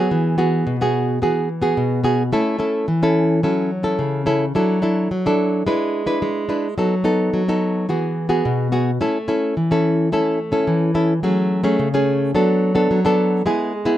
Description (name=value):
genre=samba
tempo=108 BPM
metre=4/4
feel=straight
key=A major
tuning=A4 = 440 Hz
part: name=nylon-string guitar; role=solo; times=0.0-14.0 s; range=B2 to B4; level=-17 LUFS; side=equal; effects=none
room=moderate studio reverb, RT60 0.5 s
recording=dark, warm production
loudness=-17 LUFS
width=side -12 dB against mid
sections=0.0-11.2 A section; 11.2-14.0 B section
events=none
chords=0.1 Eadd9; 2.3 A; 3.4 F#m7; 4.5 Dadd9/F#; 5.7 E7/G#; 6.8 B7/F#; 7.9 Eadd9; 9.0 A; 11.2 F#madd9; 12.3 Bm7/F#; 13.5 E/G#